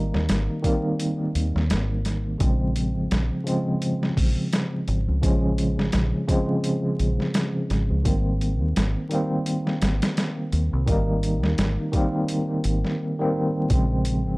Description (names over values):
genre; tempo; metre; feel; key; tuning
trip hop; 85 BPM; 4/4; swing 57% on 16ths; Bb dorian; A4 = 438 Hz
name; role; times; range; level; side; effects
tine electric piano; accompaniment; 0.0-14.4 s; Db3 to Eb4; -24 LUFS; equal; medium stereo tremolo, tape echo
deep dub fingered electric bass; bass; 0.0-14.4 s; Ab1 to Eb2; -24 LUFS; equal; transformer saturation
boom bap sampler-style drum kit; drums; 0.1-14.2 s; hi-hat, kick drum, snare drum; -25 LUFS; equal; overdrive
room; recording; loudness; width
little or no reverb; dry, gritty hardware recording, vinyl crackle; -21 LUFS; side -24 dB against mid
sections
0.0-13.7 A section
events
none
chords
0.0 Abmaj7; 2.4 Bbm7; 8.1 Abmaj7; 13.7 Bbm7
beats
0.29 1.00 1.70 | 2.41 3.11 3.82 4.53 | 5.23 5.94 6.64 7.35 | 8.06 8.76 9.47 10.17 | 10.88 11.59 12.29 13.00 | 13.70